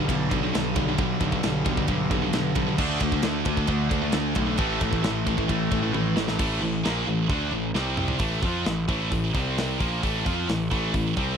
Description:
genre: heavy metal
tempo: 133 BPM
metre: 4/4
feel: straight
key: A minor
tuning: A4 = 440 Hz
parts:
  - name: heavy high-gain guitar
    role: riff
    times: 0.0-11.4 s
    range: G2 to F4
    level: -29 LUFS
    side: right 16 dB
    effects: distortion
  - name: high-gain distorted guitar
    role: riff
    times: 0.0-11.4 s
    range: G2 to F4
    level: -29 LUFS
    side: left 11 dB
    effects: distortion
  - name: tight distorted guitar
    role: riff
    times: 0.0-6.4 s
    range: G2 to D4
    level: -30 LUFS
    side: right 2 dB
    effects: distortion
  - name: fuzz picked electric bass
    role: bass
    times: 0.0-11.4 s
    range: A1 to F2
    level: -28 LUFS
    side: equal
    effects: overdrive
  - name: tight metal drum kit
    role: drums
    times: 0.1-11.3 s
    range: crash cymbal, hi-hat, kick drum, ride cymbal, snare drum, toms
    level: -29 LUFS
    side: equal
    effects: none
room: little or no reverb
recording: dry, close 1970s-style studio recording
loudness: -22 LUFS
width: side -7 dB against mid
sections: 0.0-6.4 A section; 6.4-8.2 B section; 8.2-11.4 C section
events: drum fill 5.9-6.4, 7.8-8.2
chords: 0.0 G/B; 2.8 D5; 4.6 A5; 7.8 C5; 8.2 Am; 9.3 C5; 9.8 Am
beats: 0.09 0.54 | 0.99 1.44 1.89 2.34 | 2.79 3.24 3.69 4.14 | 4.59 5.04 5.50 5.95 | 6.40 6.85 7.30 7.76 | 8.21 8.67 9.12 9.58 | 10.03 10.49 10.94

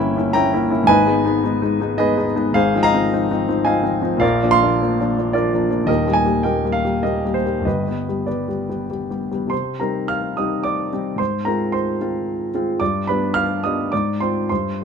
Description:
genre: classical, romantic character piece for solo piano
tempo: 94-115 BPM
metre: 3/4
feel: rubato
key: C minor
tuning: A4 = 440 Hz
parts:
  - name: warm grand piano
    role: solo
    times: 0.0-14.8 s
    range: Eb1 to F6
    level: -17 LUFS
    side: equal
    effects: none
room: light reverb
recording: close, detailed microphones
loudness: -17 LUFS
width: side -6 dB against mid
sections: 0.0-9.5 A section; 9.5-14.8 B section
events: none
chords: 0.0 Gdim7; 0.9 G#m; 2.5 Ab6; 4.2 Bb; 5.9 Eb; 7.7 G; 9.5 Cm; 11.2 Fm/Ab; 12.8 G; 13.9 Fm/Ab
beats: 0.35 | 0.88 1.42 1.97 | 2.54 3.12 3.65 | 4.22 4.80 5.34 | 5.88 6.44 7.03 | 7.65 8.28 8.89 | 9.51 10.09 10.64 | 11.20 11.74 12.26 | 12.80 13.35 13.92 | 14.49

